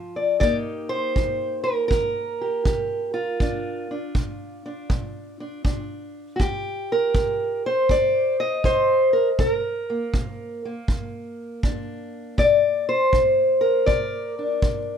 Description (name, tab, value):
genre	acoustic country blues, solo or duo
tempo	80 BPM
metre	4/4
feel	swing 66% on 8ths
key	Bb major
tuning	A4 = 441 Hz
part	fingerpicked steel-string acoustic guitar	melody	0.0-15.0 s	Bb2 to Eb5	-22 LUFS	equal	none
part	kick drum	drums	0.4-14.9 s	none	-25 LUFS	right 1 dB	none
room	moderate studio reverb, RT60 0.5 s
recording	none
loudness	-20 LUFS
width	side -8 dB against mid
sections	0.0-15.0 A section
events	none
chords	0.4 Eb; 3.4 Bb; 6.4 N.C.; 9.4 Bb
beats	| 0.41 1.16 1.91 2.66 | 3.41 4.16 4.90 5.65 | 6.40 7.15 7.90 8.64 | 9.39 10.14 10.89 11.64 | 12.38 13.13 13.88 14.63